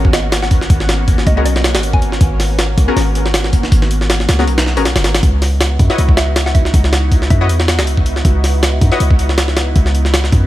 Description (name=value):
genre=drum and bass, jungle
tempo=159 BPM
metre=4/4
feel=swing 55% on 16ths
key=C# dorian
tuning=A4 = 439 Hz
part: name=lush unison pad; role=sustained chords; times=0.0-10.5 s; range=A#3 to F#4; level=-23 LUFS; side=equal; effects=chorus, phaser, vintage 12-bit sampler grit
part: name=warm 808-style bass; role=bass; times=0.0-10.5 s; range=F#1 to F#2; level=-15 LUFS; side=equal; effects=tube saturation
part: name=jungle sampler-style drum kit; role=drums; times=0.0-10.4 s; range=hi-hat, kick drum, snare drum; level=-14 LUFS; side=equal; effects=studio reverb
part: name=mallet-like synth pluck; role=melody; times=0.1-2.3, 6.2-7.6 s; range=D#5 to G#5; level=-25 LUFS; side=equal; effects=chorus, dub echo
part: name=orchestra-hit-like synth stab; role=stabs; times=1.4-9.0 s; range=B3 to D#5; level=-21 LUFS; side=left 4 dB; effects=built-in reverb, dub echo
room=little or no reverb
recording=vinyl crackle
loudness=-11 LUFS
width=side -15 dB against mid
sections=0.0-10.5 A section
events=kick drops out 4.5-5.2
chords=0.0 G#m11; 5.2 C#m11